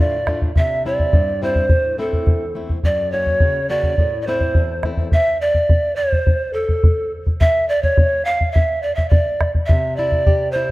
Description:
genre	andean folk, Andean ensemble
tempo	105 BPM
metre	2/4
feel	straight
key	A dorian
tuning	A4 = 440 Hz
part	breathy reedy large pan pipes	melody	0.0-10.7 s	A4 to F5	-19 LUFS	right 1 dB	slapback echo
part	flamenco guitar	accompaniment	0.0-5.1, 9.7-10.7 s	E2 to G4	-26 LUFS	left 2 dB	none
part	bombo	percussion	0.3-10.4 s	none	-17 LUFS	equal	none
room	light reverb, small room ambience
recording	rough home demo mix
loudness	-15 LUFS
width	side -19 dB against mid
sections	0.0-5.1 A section; 5.1-10.7 A section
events	none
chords	0.0 Dm; 0.6 C; 1.7 Am; 2.8 F#; 4.0 Am; 5.1 N.C.; 9.7 C

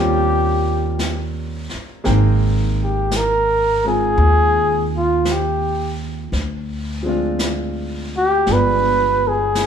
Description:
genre	jazz ballad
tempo	56 BPM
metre	4/4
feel	swing 69% on 8ths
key	unclear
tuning	A4 = 440 Hz
part	mellow flugelhorn	melody	0.0-9.7 s	F4 to B4	-17 LUFS	equal	none
part	warm grand piano	accompaniment	0.0-9.7 s	F3 to G5	-24 LUFS	right 1 dB	none
part	upright bass	bass	0.0-9.7 s	G1 to Eb2	-20 LUFS	right 1 dB	none
part	jazz brush drum kit	drums	1.0-9.7 s	brushed snare drum, hi-hat, snare drum	-29 LUFS	left 1 dB	none
room	wet large studio reverb, RT60 1.2 s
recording	band playing live in one room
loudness	-16 LUFS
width	side -8 dB against mid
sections	0.0-9.7 A section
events	flugelhorn solo 0.0-9.7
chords	0.0 Eb13; 2.1 Abmaj7; 6.3 Dm7b5; 8.5 G7b9

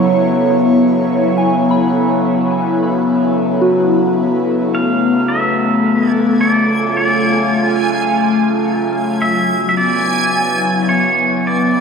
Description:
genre	ambient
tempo	54 BPM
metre	4/4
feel	straight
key	unclear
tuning	A4 = 436 Hz
part	airy breathy pad	sustained chords	0.0-11.8 s	F#3 to C#5	-14 LUFS	left 1 dB	chorus, phaser
part	soft synth bell	arpeggios	0.0-5.2 s	F#4 to E6	-20 LUFS	left 1 dB	chorus, phaser, tape echo
part	hand-pumped harmonium	drone	0.0-11.8 s	C#3 to F#3	-25 LUFS	equal	none
part	pedal steel guitar	melody	4.7-11.8 s	C#5 to F5	-18 LUFS	equal	tape echo
part	backwards swelling texture	texture	6.1-11.8 s	G#5 to G#6	-21 LUFS	right 3 dB	built-in reverb
room	wet lush hall reverb, RT60 2.9 s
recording	dreamy mix soaked in reverb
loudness	-12 LUFS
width	side -6 dB against mid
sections	0.0-11.8 A section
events	fade-out on harmonium 0.0-11.8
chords	0.3 Aadd9; 4.7 Dm; 9.2 Bmadd9

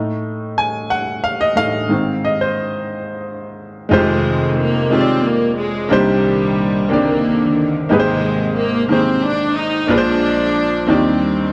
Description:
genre	gospel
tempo	60 BPM (dotted quarters)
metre	6/8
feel	straight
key	unclear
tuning	A4 = 442 Hz
part	clear baby grand piano	accompaniment	0.0-11.5 s	F1 to Ab5	-19 LUFS	equal	none
part	rich studio string section	melody	3.9-11.5 s	Bb2 to Eb4	-20 LUFS	equal	none
room	moderate large studio reverb, RT60 1.1 s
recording	dark, warm production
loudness	-17 LUFS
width	mono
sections	0.0-3.9 A section; 3.9-11.5 B section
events	grand piano solo 0.0-3.9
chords	0.0 F7b9/A; 1.9 Ab; 3.9 Fm9; 5.9 Cm9; 7.9 Abmaj9; 9.9 Bb9; 10.9 Ebmaj7

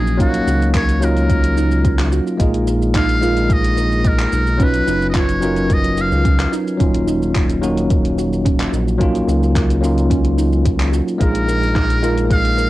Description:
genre	sunset chillout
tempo	109 BPM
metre	4/4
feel	straight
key	Eb minor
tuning	A4 = 439 Hz
part	trumpet with metal mute	melody	0.0-6.5, 11.2-12.7 s	Gb4 to F5	-22 LUFS	equal	cassette tape, analog delay
part	bell-like tine electric piano	accompaniment	0.0-12.7 s	Gb3 to F5	-19 LUFS	equal	auto-pan, plate reverb
part	soft round pluck	arpeggios	0.0-12.7 s	Db4 to Eb5	-27 LUFS	right 9 dB	lush chorus, analog delay, plate reverb
part	round analog bass	bass	0.0-12.7 s	Eb1 to Db2	-18 LUFS	equal	transformer saturation
part	deep house drum kit	drums	0.1-12.7 s	handclaps, hi-hat, shaker	-28 LUFS	equal	overdrive, cassette tape
part	electronic kick drum	drums	0.2-12.4 s	none	-18 LUFS	equal	overdrive, cassette tape
room	light reverb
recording	home recording on cassette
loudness	-14 LUFS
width	side -16 dB against mid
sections	0.0-12.7 A section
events	none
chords	0.0 Ebm9; 2.4 Bb7sus4; 4.6 Bmaj9#11; 6.8 Ebm9; 11.2 Bb7sus4

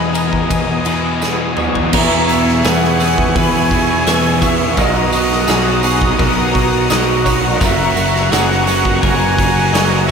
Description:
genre	rock, shoegaze and dream pop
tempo	85 BPM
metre	4/4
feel	straight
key	E lydian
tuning	A4 = 442 Hz
part	bright reedy silver concert flute	melody	0.0-10.1 s	D#5 to G#5	-21 LUFS	right 2 dB	tape echo
part	warm analog pad	sustained chords	0.0-10.1 s	B3 to D#6	-21 LUFS	equal	chorus, tremolo
part	twelve-string electric guitar	arpeggios	0.0-10.1 s	G#4 to E5	-23 LUFS	left 9 dB	ensemble chorus, tape echo
part	electric guitar through a small old amp	riff	0.0-10.1 s	E2 to G#4	-19 LUFS	right 9 dB	reverse reverb
part	sludgy distorted guitar	riff	0.0-1.9 s	E2 to E3	-24 LUFS	equal	overdrive
part	thick fuzz guitar	riff	0.0-10.1 s	E2 to B3	-20 LUFS	left 10 dB	distortion, lush chorus
part	picked electric bass	bass	0.0-10.1 s	F#1 to E2	-20 LUFS	equal	none
part	tambourine	percussion	0.1-9.9 s	none	-29 LUFS	right 11 dB	none
part	big rock drum kit	drums	0.2-9.9 s	crash cymbal, hi-hat, kick drum, ride cymbal, snare drum, toms	-18 LUFS	right 1 dB	none
room	wet plate reverb, RT60 1.8 s, small room ambience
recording	dreamy mix soaked in reverb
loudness	-12 LUFS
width	side -6 dB against mid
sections	0.0-1.9 A section; 1.9-10.1 B section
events	drum fill 1.2-1.9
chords	0.0 Emaj7; 1.9 E6; 4.8 Bmaj7; 7.6 F#7

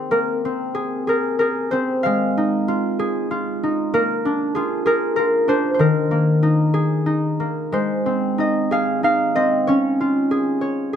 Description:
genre	children's music, lullaby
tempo	94 BPM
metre	3/4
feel	rubato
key	Ab major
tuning	A4 = 437 Hz
part	concert harp	solo	0.0-11.0 s	Eb3 to F5	-17 LUFS	equal	none
room	light reverb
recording	close, detailed microphones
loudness	-17 LUFS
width	side -8 dB against mid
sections	0.1-11.0 A section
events	none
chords	0.1 Abadd9; 2.0 Fm7/Ab; 3.9 Bb; 5.8 Ebsus4; 7.1 Eb5; 7.7 Ab; 9.7 Db

